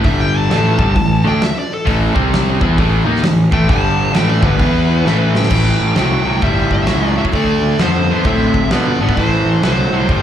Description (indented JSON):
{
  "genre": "blues rock power trio and southern rock",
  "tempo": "132 BPM",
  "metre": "4/4",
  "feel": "swing 63% on 8ths",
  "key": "A minor",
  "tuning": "A4 = 440 Hz",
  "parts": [
    { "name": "dark smooth lead guitar", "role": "melody", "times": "0.0-10.2 s", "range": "A4 to A5", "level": "-21 LUFS", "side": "left 1 dB", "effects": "overdrive, slapback echo" },
    { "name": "overdriven semi-hollow guitar", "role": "riff", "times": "0.0-10.2 s", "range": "G2 to E4", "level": "-16 LUFS", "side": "equal", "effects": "none" },
    { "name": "fuzz picked electric bass", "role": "bass", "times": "0.0-10.2 s", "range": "G1 to B2", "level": "-16 LUFS", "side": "equal", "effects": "overdrive" },
    { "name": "big rock drum kit", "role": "drums", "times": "0.0-10.2 s", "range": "crash cymbal, hi-hat, kick drum, snare drum", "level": "-19 LUFS", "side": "equal", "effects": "none" }
  ],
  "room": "small room ambience",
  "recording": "live gig heard through the venue's PA, club reverb",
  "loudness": "-12 LUFS",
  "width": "side -10 dB against mid",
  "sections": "0.0-5.5 A section; 5.5-10.2 B section",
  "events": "lead electric guitar solo 0.0-5.5; drum fill 5.1-5.5",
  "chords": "0.1 G5; 0.5 A5; 2.1 C5; 2.6 A5; 3.7 G5; 4.1 A5; 4.6 E5; 5.1 A5; 5.5 Am7; 7.3 Dm7; 9.2 Am7",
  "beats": "| 0.05 0.51 0.96 1.42 | 1.87 2.33 2.78 3.24 | 3.69 4.14 4.60 5.06 | 5.51 5.97 6.42 6.88 | 7.34 7.80 8.26 8.71 | 9.17 9.63 10.09"
}